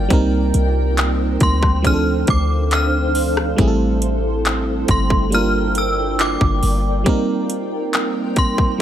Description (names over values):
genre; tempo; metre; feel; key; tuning
contemporary R&B; 69 BPM; 4/4; straight; unclear; A4 = 439 Hz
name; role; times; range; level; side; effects
FM electric piano; accompaniment; 0.0-8.8 s; F3 to Bb4; -21 LUFS; right 3 dB; chorus
granular cloud pad; sustained chords; 0.0-8.8 s; D4 to G5; -26 LUFS; equal; built-in reverb
warm 808-style bass; bass; 0.0-7.0 s; G1 to D2; -19 LUFS; left 1 dB; none
trap drum kit; drums; 0.1-8.8 s; handclaps, hi-hat, kick drum, rim click; -19 LUFS; left 1 dB; overdrive
synth chime; melody; 1.4-8.8 s; C6 to F6; -22 LUFS; equal; ensemble chorus, ping-pong delay
room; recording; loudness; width
digital ambience; none; -15 LUFS; side -10 dB against mid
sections
0.0-8.8 A section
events
none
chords
0.1 Cm7; 1.8 Dm7; 3.6 Am7; 5.3 Gm7; 7.1 Cm7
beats
| 0.10 0.97 1.84 2.71 | 3.58 4.45 5.32 6.19 | 7.06 7.93 8.80